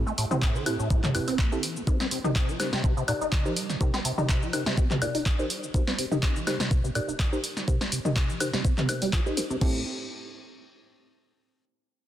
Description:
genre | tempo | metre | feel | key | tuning
acid house | 124 BPM | 4/4 | swing 54% on 16ths | unclear | A4 = 439 Hz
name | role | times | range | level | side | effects
liquid acid bass | riff | 0.0-9.8 s | G2 to Eb4 | -31 LUFS | equal | phaser, analog chorus, sidechain pumping, analog delay
punchy analog drum machine | drums | 0.1-9.7 s | crash cymbal, handclaps, hi-hat, shaker, snare drum, toms, woodblock | -29 LUFS | equal | none
deep mellow chord stab | stabs | 0.3-9.8 s | C4 to Eb5 | -33 LUFS | right 1 dB | chorus, analog delay
electronic kick drum | drums | 0.4-9.7 s | none | -25 LUFS | equal | none
room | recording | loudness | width
light reverb | dense, heavily limited modern master | -24 LUFS | side -12 dB against mid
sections
0.0-9.6 A section; 9.6-11.5 B section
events
filter sweep on acid bass 0.0-9.6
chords
0.0 Am7; 1.9 Cm7; 9.6 Am7

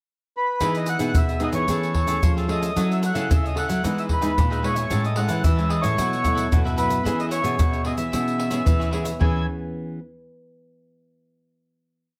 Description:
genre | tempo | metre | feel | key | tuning
samba and choro | 112 BPM | 4/4 | straight | E major | A4 = 439 Hz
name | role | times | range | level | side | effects
mellow accordion | melody | 0.4-9.5 s | B4 to G#5 | -28 LUFS | equal | none
cavaquinho | accompaniment | 0.6-9.4 s | D#4 to A5 | -35 LUFS | equal | none
nylon-string guitar | accompaniment | 0.6-10.0 s | F#2 to A4 | -31 LUFS | equal | none
nylon-string guitar | bass | 0.6-9.5 s | A2 to F#3 | -28 LUFS | equal | none
egg shaker, surdo and pandeiro | percussion | 0.6-9.3 s | none | -26 LUFS | equal | none
room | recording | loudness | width
moderate studio reverb, RT60 0.6 s | none | -22 LUFS | mono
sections
0.0-0.6 pickup bar; 0.6-9.2 A section; 9.2-11.4 final chord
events
none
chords
0.0 N.C.; 0.6 Emaj7; 1.7 Amaj7/E; 2.8 F#m7; 3.8 Emaj7; 4.9 Amaj7; 6.0 B7sus4; 7.1 E6

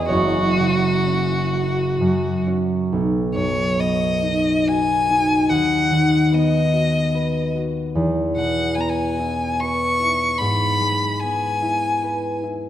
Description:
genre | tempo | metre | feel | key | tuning
classical, romantic duo for violin and harp | 61-78 BPM | 3/4 | rubato | B major | A4 = 440 Hz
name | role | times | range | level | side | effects
rich violin | melody | 0.0-12.4 s | F#4 to C#6 | -22 LUFS | left 2 dB | none
concert harp | accompaniment | 0.0-12.7 s | F#1 to G#5 | -20 LUFS | equal | none
room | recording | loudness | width
moderate scoring stage reverb, RT60 2.0 s | none | -18 LUFS | side -11 dB against mid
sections
0.0-2.9 A section; 2.9-12.7 B section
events
none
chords
0.1 F#5; 2.9 B; 5.5 B/D#; 7.9 E5; 10.4 E/G#

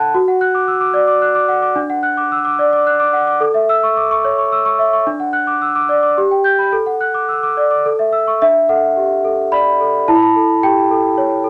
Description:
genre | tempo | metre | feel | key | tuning
classical, lullaby for celesta | 109 BPM | 3/4 | straight | D major | A4 = 441 Hz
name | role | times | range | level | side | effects
large celesta | solo | 0.0-11.5 s | D4 to G6 | -15 LUFS | equal | none
room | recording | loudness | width
moderate club reverb, RT60 0.6 s | nothing above 10.5 kHz | -15 LUFS | mono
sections
0.0-8.4 A section; 8.4-11.5 B section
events
none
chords
0.1 D/F#; 1.8 D; 3.4 A; 5.1 D; 6.2 G; 6.7 D/A; 7.8 A; 8.4 D; 10.1 A7/E

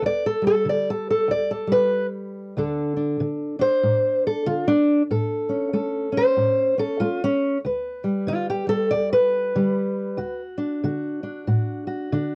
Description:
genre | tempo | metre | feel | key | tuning
acoustic country blues, solo or duo | 94 BPM | 4/4 | swing 61% on 8ths | D major | A4 = 440 Hz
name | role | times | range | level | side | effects
fingerpicked steel-string acoustic guitar | solo | 0.0-12.3 s | D2 to D5 | -23 LUFS | equal | none
room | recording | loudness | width
moderate booth ambience, RT60 0.2 s | home recording on cassette | -23 LUFS | mono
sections
0.0-12.3 A section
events
steel-string acoustic guitar solo 0.0-12.3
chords
0.0 G; 2.6 D5; 5.1 A; 7.6 G; 10.2 D

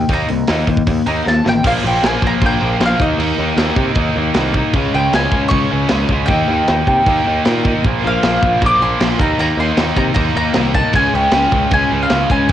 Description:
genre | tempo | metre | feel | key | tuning
punk rock | 155 BPM | 4/4 | straight | unclear | A4 = 441 Hz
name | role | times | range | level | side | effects
mandolin | melody | 0.0-12.5 s | Eb5 to D6 | -18 LUFS | equal | none
distorted electric guitar | riff | 0.0-12.5 s | Bb2 to Eb4 | -21 LUFS | left 10 dB | distortion, cassette tape
overdriven electric guitar | riff | 0.0-12.5 s | Bb2 to Eb4 | -21 LUFS | right 10 dB | cassette tape
modern bright picked electric bass | bass | 0.0-12.5 s | A1 to C3 | -20 LUFS | equal | none
tight metal drum kit | drums | 0.1-12.5 s | crash cymbal, hi-hat, kick drum, snare drum | -18 LUFS | equal | cassette tape
thick fuzz guitar | riff | 1.6-12.5 s | Bb2 to Eb4 | -24 LUFS | right 1 dB | none
room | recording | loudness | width
little or no reverb | home recording on cassette | -12 LUFS | side -11 dB against mid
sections
0.0-1.7 A section; 1.7-12.5 B section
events
drum fill 1.3-1.7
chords
0.0 Eb5; 1.7 Bb5; 3.0 Eb5; 4.7 Db5; 6.3 Eb; 7.8 Bb5; 9.2 Eb5; 10.9 Db5

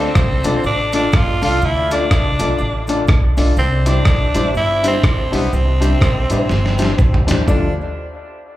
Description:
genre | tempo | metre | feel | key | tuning
ska | 123 BPM | 4/4 | swing 60% on 8ths | D dorian | A4 = 439 Hz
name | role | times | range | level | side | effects
raspy tenor saxophone | melody | 0.0-7.8 s | B3 to F4 | -20 LUFS | right 1 dB | dub echo, slapback echo
hollow-body jazz guitar | accompaniment | 0.0-7.7 s | G3 to F4 | -25 LUFS | equal | slapback echo
warm upright piano | stabs | 0.0-7.7 s | D4 to D5 | -22 LUFS | left 3 dB | dub echo, slapback echo
upright bass | bass | 0.0-7.8 s | G1 to D2 | -18 LUFS | equal | none
dusty soul sampler-style drum kit | drums | 0.2-7.6 s | hi-hat, kick drum, rim click, snare drum, toms | -17 LUFS | equal | none
cabasa | percussion | 0.2-7.7 s | none | -44 LUFS | left 2 dB | none
room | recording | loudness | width
light reverb | live gig heard through the venue's PA, club reverb | -13 LUFS | side -15 dB against mid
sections
0.0-7.5 A section; 7.5-8.6 B section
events
drum fill 6.5-7.5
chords
0.0 Dm; 3.6 Cadd9; 7.5 Dm

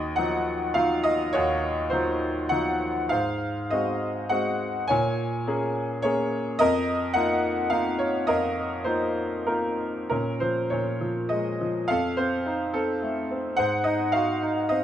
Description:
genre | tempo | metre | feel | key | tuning
classical, lyrical solo piano | 93-109 BPM | 3/4 | rubato | Bb minor | A4 = 440 Hz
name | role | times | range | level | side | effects
bright grand piano | solo | 0.0-14.8 s | Eb2 to Ab5 | -23 LUFS | equal | none
room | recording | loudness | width
light reverb | close, detailed microphones | -23 LUFS | side -10 dB against mid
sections
0.0-10.1 A section; 10.1-14.8 B section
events
none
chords
0.0 Ebmadd9; 3.1 Ab7; 4.9 Bbm7; 6.6 F7sus4; 10.1 Bbm7; 11.9 F7; 13.6 Ab7

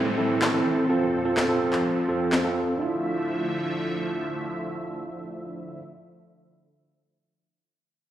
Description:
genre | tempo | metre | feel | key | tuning
dance-pop | 126 BPM | 4/4 | straight | D minor | A4 = 440 Hz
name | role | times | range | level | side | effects
tine electric piano | accompaniment | 0.0-5.8 s | C4 to A4 | -26 LUFS | right 1 dB | medium stereo tremolo
filtered supersaw swell | sustained chords | 0.0-5.8 s | F2 to E5 | -30 LUFS | equal | none
downlifter | sound effects | 0.0-2.8 s | none | -34 LUFS | equal | none
electronic handclaps and snare drum | drums | 0.4-2.4 s | none | -28 LUFS | left 1 dB | overdrive
room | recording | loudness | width
wet lush hall reverb, RT60 2.0 s, digital ambience | played on a big sound system in a bare room, large studio reverb | -23 LUFS | side -12 dB against mid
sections
0.0-2.8 A section; 2.8-6.6 B section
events
none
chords
0.0 Am; 0.9 F; 2.8 Dmadd9

